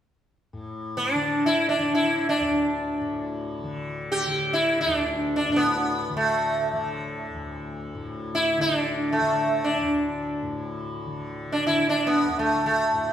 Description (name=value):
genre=indian classical, Hindustani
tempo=free time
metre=none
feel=none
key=unclear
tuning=A4 = 437 Hz
part: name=tanpura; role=drone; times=0.5-13.1 s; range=D2 to D3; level=-33 LUFS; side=left 2 dB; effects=none
part: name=sitar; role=melody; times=1.0-13.1 s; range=A3 to G4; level=-22 LUFS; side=equal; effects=none
room=wet recital hall reverb, RT60 1.6 s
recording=recorded in a church or concert hall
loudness=-22 LUFS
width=side -10 dB against mid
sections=0.5-13.1 A section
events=none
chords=none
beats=free time